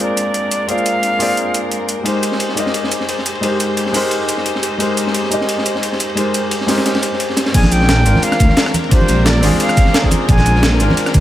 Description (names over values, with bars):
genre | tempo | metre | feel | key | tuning
liquid drum and bass | 175 BPM | 4/4 | swing 54% on 16ths | unclear | A4 = 439 Hz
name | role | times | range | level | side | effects
bright concert flute | melody | 0.0-1.9, 7.5-10.9 s | C5 to Ab5 | -19 LUFS | equal | digital delay
dark concert grand piano | accompaniment | 0.0-11.2 s | Ab3 to F5 | -19 LUFS | left 1 dB | tape echo
rich studio string section | sustained chords | 0.0-11.2 s | Ab3 to C5 | -22 LUFS | left 1 dB | sidechain pumping, low-pass filter
breakbeat sampler-style drum kit | drums | 0.0-11.2 s | crash cymbal, hi-hat, rim click, shaker, snare drum | -20 LUFS | equal | none
crunchy breakbeat drum kit | drums | 2.1-11.2 s | hi-hat, ride cymbal, snare drum | -22 LUFS | equal | high-pass filter on cymbals, high-pass filter on hats, high-pass filter on snare, high-pass filter on room
dark detuned saw bass | bass | 7.5-11.2 s | Ab1 to D2 | -14 LUFS | equal | tube saturation
electronic kick drum | drums | 7.5-11.2 s | none | -13 LUFS | equal | none
congas | percussion | 7.6-11.0 s | none | -22 LUFS | right 1 dB | none
room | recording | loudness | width
light reverb, small room ambience | none | -13 LUFS | side -13 dB against mid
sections
0.0-7.5 A section; 7.5-11.2 B section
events
drop 7.5-11.2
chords
0.0 Bb9; 2.1 Abmaj7; 7.5 Bb9